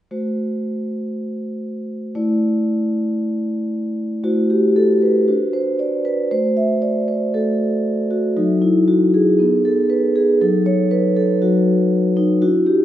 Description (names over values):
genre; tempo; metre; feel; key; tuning
classical, contemporary piece for solo vibraphone; 118 BPM; 4/4; rubato; A dorian; A4 = 439 Hz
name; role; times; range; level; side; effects
vibraphone with soft mallets; solo; 0.1-12.8 s; F#3 to E5; -16 LUFS; equal; none
room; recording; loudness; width
wet recital hall reverb, RT60 1.6 s; recorded in a church or concert hall, nothing above 10.4 kHz; -16 LUFS; side -12 dB against mid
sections
0.1-4.2 A section; 4.2-12.8 B section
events
none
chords
0.1 Am6; 2.1 Asus4; 4.2 Am; 5.3 D7; 6.3 Am6; 8.4 F#m; 9.4 B7; 10.4 F#m6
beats
| 0.11 0.63 1.14 1.65 | 2.15 2.65 3.16 3.69 | 4.23 4.76 5.28 5.80 | 6.32 6.83 7.34 7.86 | 8.37 8.88 9.39 9.90 | 10.41 10.91 11.42 11.92 | 12.42